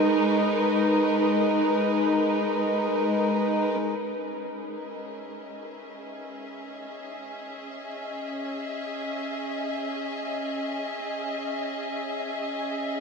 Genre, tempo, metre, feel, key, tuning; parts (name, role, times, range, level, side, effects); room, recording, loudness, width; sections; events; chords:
ambient; free time; A4 = 439 Hz
muted studio string section; sustained chords; 0.0-13.0 s; G#3 to E5; -26 LUFS; equal
hand-pumped harmonium; drone; 0.0-3.9 s; G#3 to D#4; -29 LUFS; equal
warm symphonic violin section; texture; 0.0-3.8 s; C#5 to C#6; -46 LUFS; right 2 dB
wet huge ambient reverb, RT60 7.8 s; -24 LUFS; side -5 dB against mid
0.0-3.8 A section; 3.8-13.0 B section
fade-in on string section 3.8-13.0
0.0 G#m; 3.8 C#m7